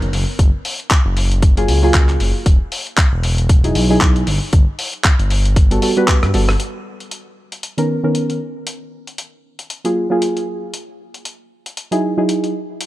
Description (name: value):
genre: deep house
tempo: 116 BPM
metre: 4/4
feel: swing 57% on 16ths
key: B major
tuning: A4 = 440 Hz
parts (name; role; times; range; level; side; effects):
- deep mellow chord stab; stabs; 0.0-12.5 s; D#3 to B4; -18 LUFS; right 1 dB; chorus, sidechain pumping, tape echo
- smooth gliding synth bass; bass; 0.0-6.6 s; E1 to G2; -16 LUFS; equal; sidechain pumping
- dusty soul sampler-style drum kit; drums; 0.0-12.9 s; handclaps, hi-hat, rim click; -21 LUFS; left 1 dB; small room ambience
- electronic kick drum; drums; 0.4-6.2 s; none; -12 LUFS; equal; small room ambience
room: little or no reverb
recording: none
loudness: -13 LUFS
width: side -16 dB against mid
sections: 0.0-6.6 A section; 6.6-12.9 B section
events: drum fill 6.1-6.6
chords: 0.1 F#maj9; 2.5 Emaj9; 4.3 Gmaj9; 6.6 Bmaj9; 8.4 F#maj9; 10.7 Emaj9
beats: | 0.39 0.91 1.43 1.94 | 2.46 2.98 3.49 4.01 | 4.53 5.04 5.56 6.08 | 6.60 7.11 7.63 8.15 | 8.67 9.18 9.70 10.22 | 10.73 11.25 11.77 12.29 | 12.80